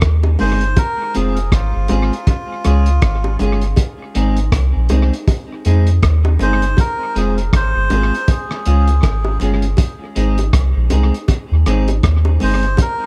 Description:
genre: roots reggae.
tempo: 80 BPM.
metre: 4/4.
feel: swing 60% on 16ths.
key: unclear.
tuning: A4 = 440 Hz.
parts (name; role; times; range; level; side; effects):
soft dub sub bass; bass; 0.0-12.8 s; F1 to F2; -17 LUFS; equal; none.
cloth-damped thuddy drum kit; drums; 0.0-13.0 s; hi-hat, kick drum, rim click; -19 LUFS; equal; tape echo.
bongos; percussion; 0.2-13.0 s; none; -30 LUFS; equal; none.
melodica; melody; 0.4-13.1 s; F4 to C5; -25 LUFS; equal; tape echo.
clean electric guitar; accompaniment; 0.4-12.6 s; Ab3 to Ab4; -25 LUFS; equal; subtle chorus, tape echo.
room: small room ambience.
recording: echo-heavy mix.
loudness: -16 LUFS.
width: mono.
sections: 0.8-13.1 A section.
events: none.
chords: 0.0 Ab; 0.8 Fm; 2.3 Db; 3.8 Ab; 6.8 Fm; 8.3 Db; 9.8 Ab.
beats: 0.02 | 0.77 1.52 2.27 3.02 | 3.77 4.52 5.28 6.03 | 6.78 7.53 8.28 9.03 | 9.78 10.53 11.28 12.03 | 12.78.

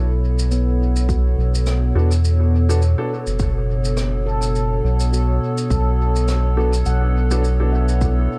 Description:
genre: ambient dub.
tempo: 104 BPM.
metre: 4/4.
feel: swing 56% on 16ths.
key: B minor.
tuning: A4 = 440 Hz.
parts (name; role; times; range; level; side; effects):
warbly tape-like pad; sustained chords; 0.0-8.4 s; B2 to C#5; -26 LUFS; equal; chorus, built-in reverb.
handpan; arpeggios; 0.0-8.4 s; B3 to F#5; -32 LUFS; equal; dub echo.
round analog bass; bass; 0.0-8.3 s; F#1 to E2; -20 LUFS; equal; none.
shaker and rim click; drums; 0.4-8.1 s; none; -35 LUFS; equal; dub echo.
electronic kick drum; drums; 1.1-8.1 s; none; -25 LUFS; equal; none.
dark upright piano; stabs; 2.0-3.1, 6.6-7.7 s; B3 to A4; -30 LUFS; equal; dub echo.
room: small room ambience.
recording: dark, warm production.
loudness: -19 LUFS.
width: mono.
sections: 0.0-8.4 A section.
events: none.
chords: 0.0 Bm7.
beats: 0.51 1.09 1.67 | 2.24 2.82 3.40 3.97 | 4.55 5.13 5.71 6.28 | 6.86 7.44 8.01.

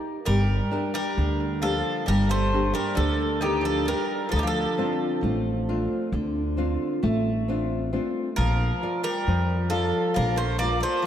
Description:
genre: greek folk, Greek bouzouki band.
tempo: 133 BPM (eighths).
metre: 9/8.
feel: straight.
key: unclear.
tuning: A4 = 444 Hz.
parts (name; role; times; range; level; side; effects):
nylon-string guitar; accompaniment; 0.0-11.1 s; D3 to D5; -27 LUFS; equal; wide subtle chorus.
Greek bouzouki; melody; 0.3-11.1 s; G4 to D5; -29 LUFS; right 2 dB; analog delay.
Greek bouzouki; second line; 0.3-11.1 s; D3 to Bb3; -31 LUFS; left 2 dB; none.
upright bass; bass; 0.3-10.8 s; G1 to F2; -26 LUFS; equal; none.
room: wet lush hall reverb, RT60 2.7 s.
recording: dreamy mix soaked in reverb.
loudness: -22 LUFS.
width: side -10 dB against mid.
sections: 0.3-11.1 A section.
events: none.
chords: 0.3 Gm; 4.3 Dm7; 8.4 Bb.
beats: | 0.27 0.72 1.17 1.62 2.07 2.52 2.97 3.42 3.87 | 4.32 4.77 5.22 5.67 6.12 6.57 7.02 7.47 7.92 | 8.37 8.82 9.27 9.72 10.17 10.62.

